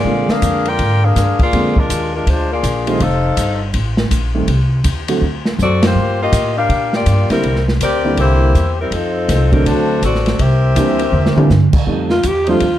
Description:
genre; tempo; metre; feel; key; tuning
jazz, big band swing; 162 BPM; 4/4; swing 64% on 8ths; unclear; A4 = 440 Hz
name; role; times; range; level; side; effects
warm saxophone section; melody; 0.0-11.7 s; F3 to G5; -17 LUFS; left 2 dB; none
upright bass; bass; 0.0-12.8 s; F1 to Bb2; -17 LUFS; equal; none
warm upright piano; accompaniment; 0.1-12.6 s; D3 to G4; -19 LUFS; right 2 dB; none
open jazz drum kit; drums; 0.3-12.7 s; crash cymbal, hi-hat, kick drum, ride cymbal, snare drum, toms; -19 LUFS; equal; none
growling alto saxophone; melody; 12.1-12.8 s; F4 to G4; -14 LUFS; equal; none
mellow trombone section; sustained chords; 12.4-12.6 s; A3 to C5; -25 LUFS; right 5 dB; none
room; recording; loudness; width
light reverb; dark, warm production; -12 LUFS; side -12 dB against mid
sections
0.0-11.9 A section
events
drum fill 5.6-6.0, 11.1-11.5; band accent 5.8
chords
0.0 Bb7; 3.0 F7; 4.5 Adim; 5.2 D7; 6.0 Gm7; 7.4 C7; 8.9 F7; 9.7 D7; 10.4 C7; 11.9 F7

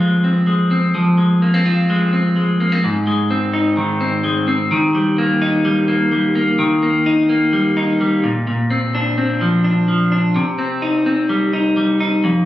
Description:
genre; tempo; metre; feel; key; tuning
indie pop; 128 BPM; 4/4; straight; Eb major; A4 = 440 Hz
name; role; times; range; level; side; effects
clean electric guitar; solo; 0.0-12.5 s; F2 to F4; -14 LUFS; equal; none
room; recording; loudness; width
light reverb, digital ambience; recorded on a phone in the room, studio reverb; -14 LUFS; side -14 dB against mid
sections
0.0-6.6 A section; 6.6-12.5 B section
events
none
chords
0.0 Fm; 2.8 Ab; 4.7 Eb; 8.2 Bbadd9; 10.4 Cm

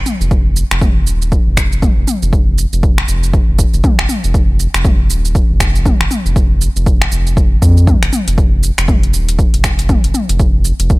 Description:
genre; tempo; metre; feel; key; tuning
afro house; 119 BPM; 4/4; swing 60% on 16ths; unclear; A4 = 439 Hz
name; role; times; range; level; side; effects
round analog bass; bass; 0.0-11.0 s; Eb1 to F2; -14 LUFS; equal; sidechain pumping
deep house drum kit; drums; 0.1-11.0 s; finger snaps, hi-hat, shaker, toms; -18 LUFS; left 1 dB; overdrive
electronic kick drum; drums; 0.3-11.0 s; none; -13 LUFS; equal; overdrive
room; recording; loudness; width
little or no reverb; none; -10 LUFS; side -22 dB against mid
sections
0.0-11.0 A section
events
none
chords
none

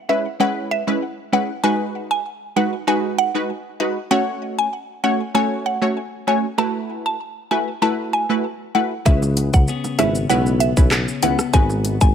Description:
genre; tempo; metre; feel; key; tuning
dancehall; 97 BPM; 4/4; straight; C# minor; A4 = 440 Hz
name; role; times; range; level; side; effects
mallet-like synth pluck; melody; 0.1-12.1 s; D#5 to A5; -22 LUFS; left 1 dB; chorus, phaser, tape echo
punchy chord stab; accompaniment; 0.1-12.1 s; G#3 to C#5; -22 LUFS; right 2 dB; chorus, sidechain pumping
clean electric guitar; arpeggios; 9.1-12.1 s; G#2 to G#4; -24 LUFS; left 4 dB; tape echo
breathy tuba; bass; 9.1-12.1 s; G#1 to C#2; -22 LUFS; equal; none
island pop drum kit; drums; 9.1-12.1 s; handclaps, hi-hat, kick drum, rim click, shaker; -16 LUFS; equal; none
bongos; percussion; 9.2-12.0 s; none; -32 LUFS; right 7 dB; none
room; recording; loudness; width
light reverb; none; -18 LUFS; side -8 dB against mid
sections
0.0-12.1 A section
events
none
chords
0.0 C#m7; 1.6 G#m7; 4.1 F#m; 6.6 B7sus4; 9.1 C#m7; 11.5 G#m7

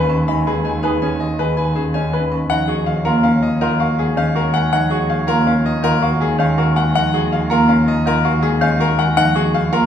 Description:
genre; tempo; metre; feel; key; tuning
classical, minimalist pattern music; 162 BPM; 6/4; straight; Eb minor; A4 = 440 Hz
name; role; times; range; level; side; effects
bright grand piano; melody; 0.0-9.9 s; Ab4 to Cb6; -20 LUFS; left 5 dB; none
electric guitar with an envelope filter; arpeggios; 0.0-9.9 s; Db4 to Cb5; -24 LUFS; right 6 dB; none
warm cello; bass; 0.0-9.9 s; Eb2; -24 LUFS; right 2 dB; none
marimba with medium hard mallets; accompaniment; 0.1-9.9 s; Eb3 to Eb4; -18 LUFS; equal; none
mellow clarinet; second line; 2.5-6.7 s; Db5; -32 LUFS; right 6 dB; none
room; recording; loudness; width
wet recital hall reverb, RT60 1.5 s; heard from further back in the room; -14 LUFS; side -9 dB against mid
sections
0.0-9.9 A section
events
none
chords
0.0 Abm/Eb; 2.5 Ebm9

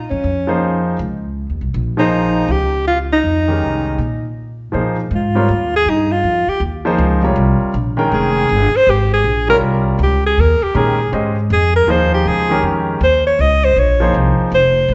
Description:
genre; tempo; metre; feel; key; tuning
modal jazz; 160 BPM; 4/4; swing 65% on 8ths; Bb dorian; A4 = 440 Hz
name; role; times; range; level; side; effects
upright bass; bass; 0.0-14.9 s; F1 to Bb2; -20 LUFS; equal; none
breathy alto saxophone; melody; 0.1-14.9 s; Db4 to Eb5; -18 LUFS; equal; none
clear grand piano; accompaniment; 0.5-14.5 s; C3 to G5; -20 LUFS; equal; none
room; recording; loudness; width
moderate recital hall reverb, RT60 1.4 s; recorded in a church or concert hall, nothing above 7.7 kHz; -15 LUFS; mono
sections
0.0-4.7 A section; 4.7-14.9 B section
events
alto saxophone solo 4.7-14.9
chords
0.0 Bbm11

